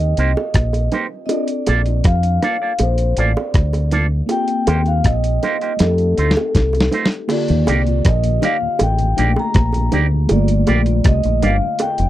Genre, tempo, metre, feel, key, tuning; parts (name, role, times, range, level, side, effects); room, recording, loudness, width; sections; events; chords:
lovers rock reggae; 80 BPM; 4/4; straight; A4 = 440 Hz
vibraphone with soft mallets; melody; 0.0-12.1 s; A4 to Bb5; -22 LUFS; equal; tape echo
mellow FM electric piano; accompaniment; 0.0-12.1 s; D3 to Bb4; -25 LUFS; left 3 dB; chorus, phaser, tape echo
deep dub fingered electric bass; bass; 0.0-12.1 s; F1 to F2; -17 LUFS; equal
electric guitar with an envelope filter; stabs; 0.2-11.6 s; A3 to D5; -20 LUFS; right 5 dB
dusty soul sampler-style drum kit; drums; 0.2-12.1 s; crash cymbal, hi-hat, kick drum, rim click, snare drum; -17 LUFS; equal
bongos; percussion; 0.4-12.0 s; -24 LUFS; right 4 dB
mellow tonewheel organ; accompaniment; 7.5-12.1 s; Eb2 to D4; -26 LUFS; left 10 dB; slow rotary speaker
light reverb; dry, close 1970s-style studio recording; -14 LUFS; side -14 dB against mid
0.0-7.3 A section; 7.3-12.1 B section
drum fill 5.8-7.3
0.0 Eb6; 1.3 Bbmaj7; 4.3 Eb6; 5.8 F7; 7.3 Ebmaj7; 10.3 Gm7